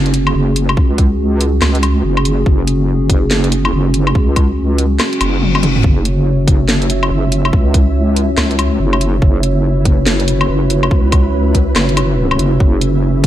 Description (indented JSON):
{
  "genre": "deep dubstep",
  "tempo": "142 BPM",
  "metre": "4/4",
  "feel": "swing 62% on 16ths, half-time",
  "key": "unclear",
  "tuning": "A4 = 440 Hz",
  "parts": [
    { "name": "dark analog pad", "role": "sustained chords", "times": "0.0-13.3 s", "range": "C#4 to C#5", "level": "-19 LUFS", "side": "right 1 dB", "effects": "chorus, vintage 12-bit sampler grit" },
    { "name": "wobble bass", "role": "bass", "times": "0.0-13.3 s", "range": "F#1 to C#2", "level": "-14 LUFS", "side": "equal", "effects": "chorus" },
    { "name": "garage drum kit", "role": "drums", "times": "0.1-13.3 s", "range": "hi-hat, snare drum, toms, woodblock", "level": "-18 LUFS", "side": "left 1 dB", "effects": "none" },
    { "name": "electronic kick drum", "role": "drums", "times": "0.8-13.3 s", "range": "none", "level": "-12 LUFS", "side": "equal", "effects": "none" },
    { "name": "reverse cymbal", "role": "sound effects", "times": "5.1-5.8 s", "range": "none", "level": "-24 LUFS", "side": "left 5 dB", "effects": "none" },
    { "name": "flickering grainy texture", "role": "texture", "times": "6.4-13.3 s", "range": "E4 to E5", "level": "-23 LUFS", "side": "equal", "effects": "built-in reverb" }
  ],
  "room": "light reverb, digital ambience",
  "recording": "dark, warm production",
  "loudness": "-11 LUFS",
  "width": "side -12 dB against mid",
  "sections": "0.0-13.3 A section",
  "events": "reverse cymbal 5.1-5.8; drum fill 5.4-5.8",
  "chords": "0.0 F#5"
}